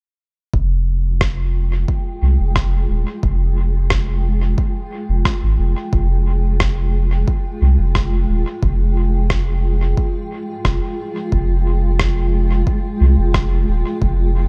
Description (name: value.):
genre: ambient dub.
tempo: 89 BPM.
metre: 4/4.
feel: straight.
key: F minor.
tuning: A4 = 440 Hz.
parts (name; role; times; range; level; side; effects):
granular cloud pad; sustained chords; 1.1-14.5 s; Ab3 to G5; -28 LUFS; equal; built-in reverb.
soft dub sub bass; bass; 0.5-14.5 s; Eb1 to C2; -18 LUFS; equal; none.
electronic kick drum; drums; 0.5-14.2 s; none; -23 LUFS; equal; overdrive, small room ambience.
electronic rim click; drums; 1.2-13.5 s; none; -27 LUFS; equal; small room ambience, dub echo.
room: digital ambience.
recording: dark, warm production.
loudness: -18 LUFS.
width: mono.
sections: 0.5-14.5 A section.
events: none.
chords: 0.5 Fmadd9.